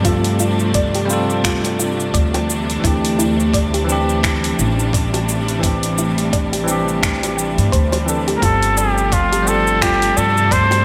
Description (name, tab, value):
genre	sunset chillout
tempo	86 BPM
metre	4/4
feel	swing 57% on 16ths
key	unclear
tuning	A4 = 444 Hz
part	bell-like tine electric piano	accompaniment	0.0-10.8 s	E3 to A4	-24 LUFS	equal	digital delay
part	rich symphonic string section	sustained chords	0.0-10.8 s	C3 to D4	-25 LUFS	equal	none
part	soft round pluck	arpeggios	0.0-10.8 s	E4 to G5	-28 LUFS	equal	lush chorus, digital delay
part	upright bass	bass	0.0-10.8 s	G1 to G2	-23 LUFS	equal	none
part	deep house drum kit	drums	0.0-10.8 s	cabasa, finger snaps, hi-hat	-25 LUFS	equal	overdrive, gated reverb
part	electronic kick drum	drums	0.0-10.7 s	none	-23 LUFS	equal	none
part	bongos	percussion	1.1-10.8 s	none	-30 LUFS	equal	none
part	trumpet with straight mute	melody	8.4-10.8 s	F4 to C5	-18 LUFS	equal	vintage 12-bit sampler grit, digital delay
room	moderate lush hall reverb, RT60 2.2 s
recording	bright 1980s-style digital production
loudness	-17 LUFS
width	mono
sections	0.0-10.8 A section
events	none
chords	0.0 G9sus4; 2.5 D9sus4; 8.4 G9sus4